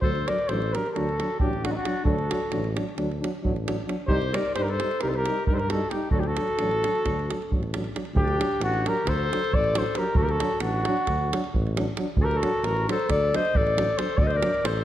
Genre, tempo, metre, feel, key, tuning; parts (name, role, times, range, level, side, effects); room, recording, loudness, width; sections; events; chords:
balkan folk, Balkan brass band; 267 BPM (eighths); 9/8; straight; D phrygian dominant; A4 = 440 Hz
mellow flugelhorn; melody; 0.0-14.8 s; Eb4 to Eb5; -27 LUFS; equal
mellow clarinet; second line; 0.0-14.8 s; C4 to C5; -32 LUFS; left 3 dB
mellow French horn; accompaniment; 0.0-14.5 s; D4 to Eb4; -35 LUFS; left 3 dB
mellow euphonium; accompaniment; 0.0-14.5 s; F#3 to G3; -34 LUFS; right 4 dB
mellow tuba; bass; 0.0-14.8 s; A1 to G2; -30 LUFS; equal
davul; percussion; 0.0-14.8 s; -29 LUFS; right 1 dB
moderate concert hall reverb, RT60 1.7 s; -23 LUFS; side -12 dB against mid
0.0-8.1 A section; 8.1-14.8 B section
0.0 D; 4.1 Cm; 6.1 D